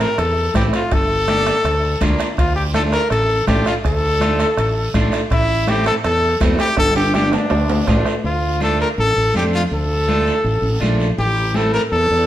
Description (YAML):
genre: latin, cumbia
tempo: 164 BPM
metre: 4/4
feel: straight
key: D minor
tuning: A4 = 441 Hz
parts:
  - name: bright trumpet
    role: melody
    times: 0.0-12.3 s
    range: D4 to Bb4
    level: -18 LUFS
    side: left 1 dB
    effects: none
  - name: electric guitar at the edge of break-up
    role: accompaniment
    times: 0.0-11.8 s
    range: A3 to G4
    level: -24 LUFS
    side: right 1 dB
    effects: none
  - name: fretless electric bass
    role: bass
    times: 0.0-12.3 s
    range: G1 to F2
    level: -20 LUFS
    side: equal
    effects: none
  - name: bombo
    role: percussion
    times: 0.0-8.2 s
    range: none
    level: -23 LUFS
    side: equal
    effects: none
  - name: guiro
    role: percussion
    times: 0.0-12.3 s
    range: none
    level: -32 LUFS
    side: right 3 dB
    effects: none
  - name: timbales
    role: percussion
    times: 0.0-8.1 s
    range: none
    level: -26 LUFS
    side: right 2 dB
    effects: none
  - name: congas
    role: percussion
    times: 0.2-12.1 s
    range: none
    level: -26 LUFS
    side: left 1 dB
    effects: none
room: wet stone room reverb, RT60 1.3 s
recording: band playing live in one room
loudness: -15 LUFS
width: side -12 dB against mid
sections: 0.0-8.2 A section; 8.2-12.3 B section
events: drum fill 6.8-8.2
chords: 0.0 Am; 0.9 Gmadd9; 2.4 Dm; 5.3 Am; 6.8 Gm; 7.5 Dm; 11.2 Am